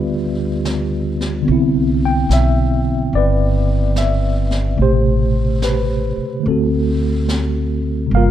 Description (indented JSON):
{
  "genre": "jazz ballad",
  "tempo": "72 BPM",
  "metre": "4/4",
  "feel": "swing 66% on 8ths",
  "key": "D minor",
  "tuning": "A4 = 442 Hz",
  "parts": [
    { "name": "mellow tine electric piano", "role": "accompaniment", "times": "0.0-8.3 s", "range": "B2 to G5", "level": "-17 LUFS", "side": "equal", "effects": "overdrive, medium stereo tremolo" },
    { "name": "upright bass", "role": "bass", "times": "0.0-8.3 s", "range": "G1 to D2", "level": "-18 LUFS", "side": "equal", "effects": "none" },
    { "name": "jazz brush drum kit", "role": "drums", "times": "0.7-8.3 s", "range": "brushed snare drum, hi-hat, snare drum", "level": "-30 LUFS", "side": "left 1 dB", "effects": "none" }
  ],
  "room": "light reverb",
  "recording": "dark, warm production",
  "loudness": "-15 LUFS",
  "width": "side -11 dB against mid",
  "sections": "0.0-8.3 A section",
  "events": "none",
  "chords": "0.0 G7; 1.5 Cmaj9; 4.8 Am9; 6.4 D7",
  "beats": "0.65 | 1.48 2.30 3.13 3.96 | 4.79 5.62 6.45 7.28 | 8.12"
}